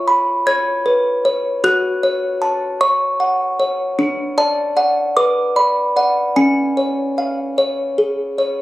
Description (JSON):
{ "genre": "classical, lullaby for music box", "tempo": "51 BPM (dotted quarters)", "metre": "6/8", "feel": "straight", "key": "F# minor", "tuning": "A4 = 439 Hz", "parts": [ { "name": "music box", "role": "solo", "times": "0.0-8.6 s", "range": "C#4 to G#6", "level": "-15 LUFS", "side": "equal", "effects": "none" } ], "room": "light reverb", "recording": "recorded on a phone in the room, club reverb, compression", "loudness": "-15 LUFS", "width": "side -16 dB against mid", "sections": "0.0-8.6 A section", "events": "none", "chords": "0.0 C#7/E#; 1.6 F#m; 4.0 D; 5.2 Bm; 6.4 C#", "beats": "0.47 | 1.64 2.81 | 3.98 5.17 | 6.37 7.58" }